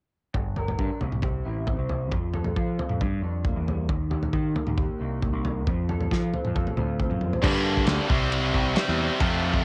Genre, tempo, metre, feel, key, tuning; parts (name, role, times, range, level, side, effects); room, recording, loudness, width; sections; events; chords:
quiet-loud alternative rock; 135 BPM; 4/4; straight; G minor; A4 = 436 Hz
electric guitar through a small old amp; arpeggios; 0.3-7.4 s; G2 to Bb4; -35 LUFS; equal; analog chorus, cassette tape
growling picked electric bass; bass; 0.3-9.6 s; G1 to F3; -30 LUFS; equal; overdrive, tube saturation
loose indie drum kit; drums; 0.3-9.6 s; crash cymbal, kick drum, ride cymbal, snare drum, toms; -30 LUFS; equal; cassette tape
high-gain distorted guitar; riff; 7.4-9.6 s; F2 to E4; -31 LUFS; equal; distortion, cassette tape
high-gain distorted guitar; riff; 7.4-9.6 s; F2 to C4; -34 LUFS; equal; distortion, cassette tape
tight distorted guitar; riff; 7.4-9.6 s; F2 to C4; -32 LUFS; equal; distortion, cassette tape
little or no reverb; home recording on cassette; -26 LUFS; mono
0.3-7.4 A section; 7.4-9.6 B section
drum fill 7.0-7.4
0.3 Gm; 1.0 C; 2.1 F; 3.0 Gm; 3.9 Eb; 5.7 F; 7.4 Gm; 8.1 C